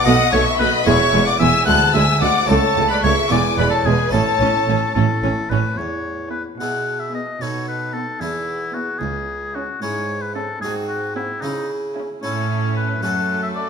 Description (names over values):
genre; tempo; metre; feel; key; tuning
classical, baroque-style concerto movement with solo episodes; 74 BPM (dotted quarters); 6/8; straight; A major, E major from 5.8 s; A4 = 441 Hz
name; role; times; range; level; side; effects
clear oboe; melody; 0.0-13.7 s; D#4 to F#5; -22 LUFS; left 4 dB; none
rich chamber violin section; melody; 0.0-13.7 s; G#5 to F#6; -23 LUFS; left 1 dB; none
rich studio violin section; second line; 0.0-13.7 s; D#4 to A5; -23 LUFS; left 3 dB; none
harpsichord; accompaniment; 0.0-13.7 s; C#2 to A4; -25 LUFS; right 1 dB; none
rich chamber viola section; accompaniment; 0.1-13.7 s; G#3 to C#4; -25 LUFS; right 2 dB; none
rich studio cello section; bass; 0.1-13.7 s; C#2 to C#3; -24 LUFS; right 4 dB; none
warm chamber double bass section; bass; 0.1-5.6 s; E1 to D2; -21 LUFS; right 4 dB; none
room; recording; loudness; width
wet recital hall reverb, RT60 1.6 s; none; -17 LUFS; side -6 dB against mid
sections
0.0-5.8 A section; 5.8-13.7 B section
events
none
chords
0.1 B5; 0.9 E; 1.7 E7/D; 2.5 A/C#; 3.3 E; 4.1 A; 5.8 E; 7.4 B7; 8.2 E; 9.0 C#m; 10.6 G#7; 11.4 C#m; 12.2 A; 13.0 F#m